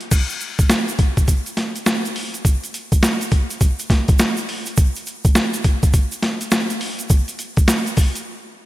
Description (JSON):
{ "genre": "R&B", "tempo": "103 BPM", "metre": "4/4", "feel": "swing 63% on 16ths", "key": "none", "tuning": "none", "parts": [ { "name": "boom bap sampler-style drum kit", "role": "drums", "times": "0.0-8.3 s", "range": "crash cymbal, hi-hat, kick drum, snare drum", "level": "-16 LUFS", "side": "equal", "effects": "overdrive" }, { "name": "egg shaker", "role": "percussion", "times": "0.1-8.3 s", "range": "none", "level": "-30 LUFS", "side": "right 3 dB", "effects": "none" } ], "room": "light reverb", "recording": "bright 1980s-style digital production", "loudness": "-16 LUFS", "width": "side -16 dB against mid", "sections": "0.1-8.7 A section", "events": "break 8.3-8.7", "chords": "none" }